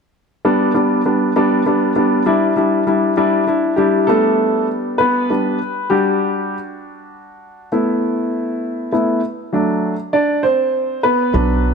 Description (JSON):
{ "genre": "six-eight pop ballad", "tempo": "66 BPM (dotted quarters)", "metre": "6/8", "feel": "straight", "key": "G major", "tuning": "A4 = 440 Hz", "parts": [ { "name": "clear upright piano", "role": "accompaniment", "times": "0.4-11.7 s", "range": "F#3 to D5", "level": "-15 LUFS", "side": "equal", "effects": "none" }, { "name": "upright bass", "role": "bass", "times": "11.3-11.7 s", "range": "B1", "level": "-16 LUFS", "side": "right 1 dB", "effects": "none" } ], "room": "moderate echo chamber reverb, RT60 2.3 s", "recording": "none", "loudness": "-14 LUFS", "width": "side -5 dB against mid", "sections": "0.4-4.1 A section; 4.1-11.7 B section", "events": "upright piano solo 4.1-11.7", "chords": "0.4 G; 2.3 Em7/G; 4.1 G; 5.9 Dadd11/G; 7.7 Asus2; 9.5 D" }